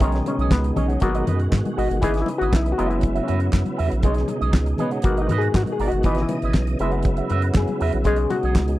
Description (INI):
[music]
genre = disco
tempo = 119 BPM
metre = 4/4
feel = straight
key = unclear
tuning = A4 = 439 Hz
[part]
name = auto-wah clav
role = accompaniment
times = 0.0-8.8 s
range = D#3 to B4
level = -25 LUFS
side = left 4 dB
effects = overdrive
[part]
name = electric guitar with an envelope filter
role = accompaniment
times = 0.0-8.7 s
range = E4 to F#5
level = -30 LUFS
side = right 8 dB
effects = wah, spring reverb
[part]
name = overdriven tonewheel organ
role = sustained chords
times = 0.0-8.8 s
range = B2 to D#5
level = -27 LUFS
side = right 2 dB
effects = chorus vibrato, fast rotary speaker
[part]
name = round analog bass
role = bass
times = 0.0-8.8 s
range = F#1 to G#2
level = -23 LUFS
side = equal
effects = none
[part]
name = damped 70s drum kit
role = drums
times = 0.0-8.8 s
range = handclaps, hi-hat, kick drum, snare drum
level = -20 LUFS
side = equal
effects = none
[part]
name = congas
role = percussion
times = 0.0-8.7 s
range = none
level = -30 LUFS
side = left 5 dB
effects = none
[sound]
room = little or no reverb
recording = dry, close 1970s-style studio recording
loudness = -19 LUFS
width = side -16 dB against mid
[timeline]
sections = 0.0-8.8 A section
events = clav solo 0.0-8.8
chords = 0.0 B69; 1.0 G#m7; 2.0 C#m9/G#; 2.8 F#7sus4; 4.0 B69; 5.0 G#m7; 6.0 C#m9/G#; 6.8 F#7sus4; 8.1 B69